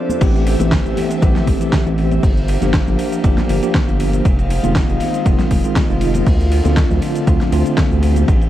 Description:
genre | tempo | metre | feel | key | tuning
deep house | 119 BPM | 4/4 | swing 53% on 16ths | A phrygian | A4 = 438 Hz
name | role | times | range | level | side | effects
airy breathy pad | sustained chords | 0.0-8.5 s | Ab3 to F5 | -28 LUFS | left 1 dB | chorus, sidechain pumping
bell-like tine electric piano | stabs | 0.0-8.3 s | D3 to A4 | -20 LUFS | equal | medium stereo tremolo, sidechain pumping, analog delay
granular cloud pad | texture | 0.0-8.5 s | D4 to F5 | -26 LUFS | right 1 dB | built-in reverb, sidechain pumping
deep house drum kit | drums | 0.1-8.5 s | cabasa, crash cymbal, hi-hat, snare drum | -24 LUFS | equal | overdrive
congas | percussion | 0.1-8.3 s | none | -27 LUFS | left 4 dB | none
round analog bass | bass | 0.2-8.5 s | F1 to D2 | -18 LUFS | equal | sidechain pumping
crunchy breakbeat drum kit | drums | 0.2-8.5 s | hi-hat, ride cymbal, snare drum | -32 LUFS | right 1 dB | sidechain pumping on cymbals, high-pass filter on cymbals, sidechain pumping on hats, high-pass filter on hats, high-pass filter on snare, high-pass filter on room
electronic kick drum | drums | 0.2-8.4 s | none | -16 LUFS | equal | overdrive
room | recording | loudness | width
studio reverb | cassette tape | -13 LUFS | side -13 dB against mid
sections
0.2-8.5 A section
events
drop 0.2-8.5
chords
0.2 Am7; 2.2 Gm7; 4.2 Fm7; 6.3 Dm7

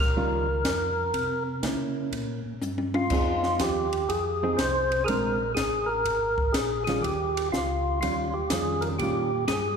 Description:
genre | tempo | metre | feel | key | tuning
soul jazz organ trio | 122 BPM | 4/4 | swing 66% on 8ths | Eb mixolydian | A4 = 439 Hz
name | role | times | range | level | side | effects
percussive tonewheel organ | melody | 0.0-9.8 s | F4 to C5 | -26 LUFS | equal | slow rotary speaker, overdrive
mellow tonewheel organ | bass | 0.0-9.8 s | Ab1 to Db3 | -33 LUFS | equal | chorus vibrato, slow rotary speaker
hollow-body jazz guitar | accompaniment | 0.2-9.3 s | Eb3 to Ab4 | -32 LUFS | right 2 dB | none
compact cocktail drum kit | drums | 0.6-9.6 s | crash cymbal, hi-hat, kick drum, ride cymbal, snare drum, toms | -31 LUFS | equal | none
room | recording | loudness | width
wet concert hall reverb, RT60 2.2 s | recorded in a church or concert hall | -24 LUFS | side -6 dB against mid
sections
0.0-9.8 A section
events
drum fill 2.6-3.1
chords
0.0 Eb9; 1.1 C7b9; 3.1 Fm7; 5.1 Bb9; 7.0 Eb9

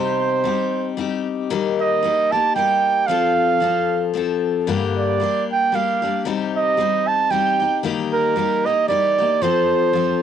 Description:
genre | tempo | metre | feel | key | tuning
folk | 114 BPM | 3/4 | swing 57% on 8ths | C dorian | A4 = 440 Hz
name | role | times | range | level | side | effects
warm flugelhorn | melody | 0.0-10.2 s | Bb4 to A5 | -18 LUFS | right 6 dB | cassette tape
picked steel-string acoustic guitar | accompaniment | 0.0-10.2 s | G2 to A4 | -21 LUFS | left 8 dB | cassette tape
room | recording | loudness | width
light reverb | home recording on cassette | -17 LUFS | side -8 dB against mid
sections
0.0-10.2 A section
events
none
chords
0.0 Cm; 1.5 Eb; 3.1 F; 4.7 Gm; 6.3 Cm; 7.8 Eb; 9.4 F

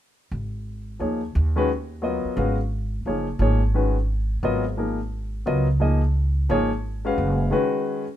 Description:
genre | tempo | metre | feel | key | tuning
modal jazz | 175 BPM | 3/4 | swing 64% on 8ths | G# dorian | A4 = 440 Hz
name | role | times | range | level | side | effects
upright bass | bass | 0.3-7.5 s | F#1 to D#2 | -23 LUFS | right 1 dB | none
clear baby grand piano | accompaniment | 1.0-8.0 s | D#3 to E#5 | -24 LUFS | left 2 dB | none
room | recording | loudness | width
light reverb | minimal, uncompressed stereo recording | -21 LUFS | side -11 dB against mid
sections
0.3-8.2 A section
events
none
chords
0.3 G#9sus4

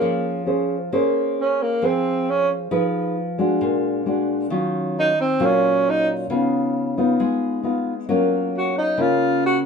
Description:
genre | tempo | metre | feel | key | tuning
bossa nova | 134 BPM | 4/4 | straight | Bb minor | A4 = 440 Hz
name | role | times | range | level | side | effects
breathy tenor saxophone | melody | 0.0-9.6 s | Bb3 to Gb4 | -19 LUFS | right 2 dB | none
nylon-string guitar | accompaniment | 0.0-9.7 s | Bb2 to C5 | -20 LUFS | left 1 dB | none
room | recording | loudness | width
moderate studio reverb, RT60 0.7 s | minimal, uncompressed stereo recording | -18 LUFS | side -6 dB against mid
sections
0.9-9.7 A section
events
tenor saxophone solo 0.9-9.7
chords
0.0 Bbm9; 2.7 Fm7b5; 3.6 Bbaug7; 4.5 Ebm9; 6.3 Db9; 8.1 Gbmaj7

